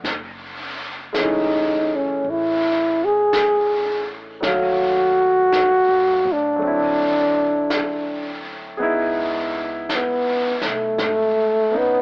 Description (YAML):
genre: jazz ballad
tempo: 55 BPM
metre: 4/4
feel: swing 68% on 8ths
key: unclear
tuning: A4 = 440 Hz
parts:
  - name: warm baby grand piano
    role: accompaniment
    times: 0.0-12.0 s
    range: E3 to E#5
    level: -26 LUFS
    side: equal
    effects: none
  - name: upright bass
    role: bass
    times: 0.0-12.0 s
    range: F#1 to A2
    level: -42 LUFS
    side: equal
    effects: none
  - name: vintage brush drum kit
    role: drums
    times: 0.0-12.0 s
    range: brushed snare drum, hi-hat, snare drum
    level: -27 LUFS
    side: equal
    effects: cassette tape
  - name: breathy trombone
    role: melody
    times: 1.2-12.0 s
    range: A3 to G#4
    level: -17 LUFS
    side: equal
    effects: cassette tape
room: light reverb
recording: home recording on cassette, AM radio sound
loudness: -17 LUFS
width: side -34 dB against mid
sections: 0.0-12.0 A section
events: none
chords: 0.0 F#m9; 4.4 D#m7b5; 6.6 D9; 8.8 C#m9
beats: | 0.05 1.15 2.24 3.34 | 4.43 5.52 6.62 7.71 | 8.80 9.89 10.98